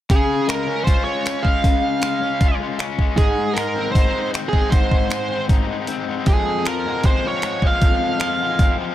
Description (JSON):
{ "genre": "indie rock", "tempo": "155 BPM", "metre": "4/4", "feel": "straight", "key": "unclear", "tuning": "A4 = 440 Hz", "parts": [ { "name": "smooth overdriven lead guitar", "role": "melody", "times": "0.1-8.8 s", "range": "Ab4 to F5", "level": "-22 LUFS", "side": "right 4 dB", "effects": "digital delay" }, { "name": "overdriven electric guitar", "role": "riff", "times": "0.1-8.9 s", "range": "F2 to F4", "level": "-23 LUFS", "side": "left 6 dB", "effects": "harmonic tremolo" }, { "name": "detuned 8-bit digital drum machine", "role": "drums", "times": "0.1-8.7 s", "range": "finger snaps, hi-hat, kick drum", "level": "-18 LUFS", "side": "equal", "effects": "none" } ], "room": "light reverb", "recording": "none", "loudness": "-17 LUFS", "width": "side -12 dB against mid", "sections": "0.1-8.9 A section", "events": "break 5.9-6.3", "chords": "0.1 Db; 3.2 Ab; 6.3 Fm", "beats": "| 0.10 0.48 0.87 1.26 | 1.64 2.03 2.41 2.80 | 3.19 3.57 3.96 4.34 | 4.73 5.12 5.50 5.89 | 6.27 6.66 7.05 7.43 | 7.82 8.21 8.59" }